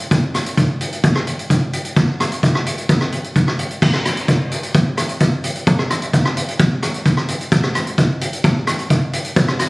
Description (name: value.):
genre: calypso.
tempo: 130 BPM.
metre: 4/4.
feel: straight.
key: none.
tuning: none.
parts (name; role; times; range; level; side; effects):
street-band drum kit; drums; 0.0-9.7 s; crash cymbal, hi-hat, kick drum, rim click; -15 LUFS; equal; none.
room: light reverb.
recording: recorded on a phone in the room, studio reverb.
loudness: -15 LUFS.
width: side -25 dB against mid.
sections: 0.0-3.8 A section; 3.8-9.7 B section.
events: none.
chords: none.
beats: | 0.11 0.57 1.04 1.50 | 1.97 2.43 2.90 3.36 | 3.82 4.29 4.75 5.21 | 5.67 6.14 6.60 7.06 | 7.52 7.98 8.44 8.90 | 9.37.